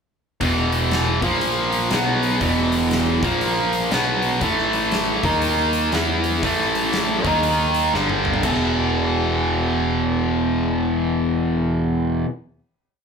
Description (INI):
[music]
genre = blues rock power trio and southern rock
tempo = 120 BPM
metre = 4/4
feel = swing 63% on 8ths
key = unclear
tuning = A4 = 440 Hz
[part]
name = overdriven electric guitar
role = riff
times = 0.4-12.3 s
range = E2 to E4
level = -19 LUFS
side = equal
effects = none
[part]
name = growling picked electric bass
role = bass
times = 0.4-12.2 s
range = E1 to E2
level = -27 LUFS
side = equal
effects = overdrive
[part]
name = huge arena drum kit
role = drums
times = 0.4-8.6 s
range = crash cymbal, hi-hat, kick drum, snare drum, toms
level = -27 LUFS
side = left 1 dB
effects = none
[sound]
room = light reverb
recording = band playing live in one room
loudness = -18 LUFS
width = side -6 dB against mid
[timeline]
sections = 0.4-8.4 riff; 8.4-12.4 final chord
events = drum fill 7.9-8.4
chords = 0.4 E5; 1.2 A#5; 1.9 B5; 2.4 E5; 3.2 A#5; 3.9 B5; 4.4 A5; 5.2 D#5; 5.9 E5; 6.4 A5; 7.2 D#5; 7.9 G5; 8.4 E5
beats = | 0.42 0.92 1.42 1.92 | 2.42 2.92 3.42 3.92 | 4.42 4.92 5.42 5.93 | 6.43 6.93 7.43 7.93 | 8.43 8.93 9.43 9.93 | 10.43 10.93 11.43 11.92